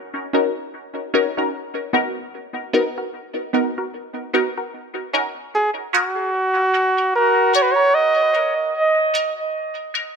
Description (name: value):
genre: reggae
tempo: 75 BPM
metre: 4/4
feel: swing 60% on 16ths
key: Eb minor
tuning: A4 = 445 Hz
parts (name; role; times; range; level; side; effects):
- filtered dub chord stab; stabs; 0.3-10.1 s; B3 to Bb4; -22 LUFS; left 1 dB; phaser, high-pass filter, low-pass filter, tape echo
- warm flugelhorn; melody; 5.5-8.7 s; Gb4 to D#5; -16 LUFS; right 1 dB; tape echo
room: moderate echo chamber reverb, RT60 1.6 s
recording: echo-heavy mix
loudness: -17 LUFS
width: side -6 dB against mid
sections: 0.0-4.7 A section; 4.7-10.2 B section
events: filter sweep on synth stab 1.5-10.2; break 7.9-10.2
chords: 0.0 Ebm7; 1.5 Bmaj7; 4.7 Ebm7; 7.9 Bmaj7